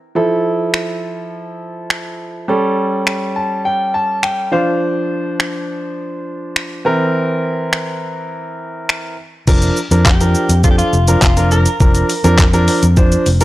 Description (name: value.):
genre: dance-pop.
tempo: 103 BPM.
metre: 4/4.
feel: straight.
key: unclear.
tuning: A4 = 436 Hz.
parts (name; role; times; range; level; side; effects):
warm baby grand piano; accompaniment; 0.2-13.4 s; E3 to A5; -17 LUFS; right 1 dB; sidechain pumping.
detuned 8-bit digital drum machine; drums; 0.7-13.4 s; crash cymbal, finger snaps, handclaps, hi-hat, kick drum, shaker; -15 LUFS; equal; none.
fingered electric bass; bass; 9.5-13.4 s; F1 to F2; -13 LUFS; equal; sidechain pumping.
direct-recorded clean electric guitar; melody; 10.1-12.6 s; F4 to Bb4; -21 LUFS; left 1 dB; wide subtle chorus, tape echo.
room: digital ambience.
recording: dry, gritty hardware recording.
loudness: -13 LUFS.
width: side -16 dB against mid.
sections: 0.0-9.5 A section; 9.5-13.4 B section.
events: grand piano fill 3.1-4.8.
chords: 0.2 Fmaj7; 2.5 A7; 4.5 Dm7; 6.9 C7; 9.5 Bb/F.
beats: | 0.16 0.74 1.32 1.90 | 2.49 3.07 3.65 4.23 | 4.82 5.40 5.98 6.56 | 7.15 7.73 8.31 8.89 | 9.48 10.06 10.64 11.22 | 11.81 12.39 12.97.